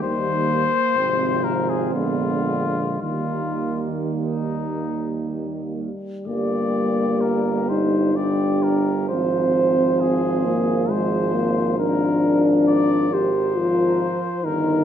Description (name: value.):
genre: classical, hymn-like piece for brass band.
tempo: 52-69 BPM.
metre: 3/4.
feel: rubato.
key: Eb major.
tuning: A4 = 440 Hz.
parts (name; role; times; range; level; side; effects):
warm cornet; melody; 0.0-14.8 s; Eb4 to D5; -26 LUFS; left 6 dB; none.
mellow French horn section; second line; 0.0-14.8 s; Bb3 to C5; -27 LUFS; right 9 dB; none.
mellow euphonium; accompaniment; 0.0-14.8 s; F3 to G4; -22 LUFS; left 2 dB; none.
mellow trombone; accompaniment; 0.0-14.8 s; C3 to G3; -28 LUFS; right 2 dB; none.
clear tuba; bass; 0.0-14.8 s; G1 to Eb2; -28 LUFS; equal; none.
room: moderate concert hall reverb, RT60 2.1 s.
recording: none.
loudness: -19 LUFS.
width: side -9 dB against mid.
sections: 0.0-6.3 A section; 6.3-14.8 B section.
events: none.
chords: 0.0 Eb; 1.0 Fm/Ab; 1.9 Bb7b9; 3.0 Eb; 6.3 Gm; 9.1 Fm/Ab; 11.8 Bb7/Ab.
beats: | 0.02 0.96 1.93 | 3.02 4.16 5.25 | 6.27 7.23 8.17 | 9.10 10.01 10.90 | 11.79 12.69 13.58 | 14.46.